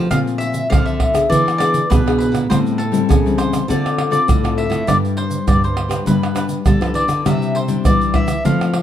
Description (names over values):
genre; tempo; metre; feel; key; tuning
samba and choro; 101 BPM; 4/4; straight; C major; A4 = 440 Hz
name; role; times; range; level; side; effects
nylon-string guitar; accompaniment; 0.0-8.8 s; A2 to B4; -21 LUFS; left 6 dB; none
nylon-string guitar; bass; 0.0-8.8 s; G2 to G3; -21 LUFS; right 1 dB; none
mandolin; melody; 0.1-8.8 s; A4 to F5; -21 LUFS; left 1 dB; none
tube shaker, surdo, pandeiro and tamborim; percussion; 0.1-8.8 s; none; -18 LUFS; right 2 dB; none
room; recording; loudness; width
light reverb; dark, warm production; -14 LUFS; side -10 dB against mid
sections
0.0-8.8 A section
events
none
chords
0.1 Bbsus2; 1.3 E7; 2.5 Am7; 3.7 Dm7; 4.9 G; 7.3 Cadd9